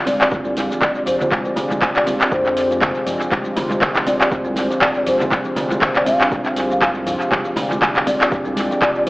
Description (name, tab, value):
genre	afro house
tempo	120 BPM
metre	4/4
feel	swing 57% on 16ths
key	F dorian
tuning	A4 = 440 Hz
part	dark analog pad	sustained chords	0.0-9.1 s	Ab3 to D5	-24 LUFS	equal	chorus, sidechain pumping
part	round analog bass	bass	0.0-8.7 s	F1 to F2	-32 LUFS	equal	sidechain pumping
part	breathy mellow bass bansuri	melody	0.1-9.1 s	C5 to F5	-22 LUFS	left 1 dB	tape echo
part	kalimba	arpeggios	0.1-9.1 s	C3 to D4	-25 LUFS	right 1 dB	sidechain pumping, tape echo
part	afro-pop drum kit	drums	0.1-9.1 s	handclaps, hi-hat, shaker, toms	-19 LUFS	equal	studio reverb, tape echo
part	congas	percussion	0.1-9.1 s	none	-29 LUFS	equal	tape echo
part	electronic kick drum	drums	0.3-8.9 s	none	-25 LUFS	equal	studio reverb
room	moderate echo chamber reverb, RT60 1.4 s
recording	echo-heavy mix, AM radio sound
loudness	-16 LUFS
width	side -21 dB against mid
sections	0.0-9.1 A section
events	none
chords	0.0 Fm69